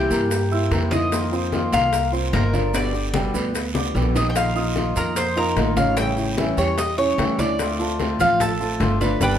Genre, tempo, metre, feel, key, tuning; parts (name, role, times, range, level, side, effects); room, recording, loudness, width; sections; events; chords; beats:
latin, Cuban son and guajira; 148 BPM; 4/4; straight; A4 = 440 Hz
Cuban tres; melody; 0.0-9.4 s; G4 to G5; -23 LUFS; left 1 dB
flamenco guitar; accompaniment; 0.0-9.3 s; B2 to G4; -26 LUFS; left 3 dB
dark baby grand piano; arpeggios; 0.0-9.3 s; Db3 to E6; -27 LUFS; right 3 dB
upright bass; bass; 0.0-9.4 s; G1 to G2; -24 LUFS; right 1 dB
bongos; percussion; 0.1-9.3 s; -31 LUFS; left 6 dB
congas; percussion; 0.1-9.3 s; -30 LUFS; left 2 dB
guiro; percussion; 0.1-9.3 s; -34 LUFS; right 4 dB
maracas; percussion; 0.1-9.3 s; -37 LUFS; right 8 dB
moderate large studio reverb, RT60 1.1 s; -18 LUFS; side -9 dB against mid
0.0-9.4 A section
drum fill 3.8-4.4; band accent 9.2
0.0 C7; 1.1 F7sus4; 2.7 G; 4.4 Bbsus4; 6.0 A7; 7.6 Dm7
0.31 0.72 | 1.12 1.53 1.93 2.33 | 2.74 3.14 3.55 3.95 | 4.36 4.76 5.17 5.57 | 5.97 6.38 6.78 7.19 | 7.59 8.00 8.40 8.80 | 9.21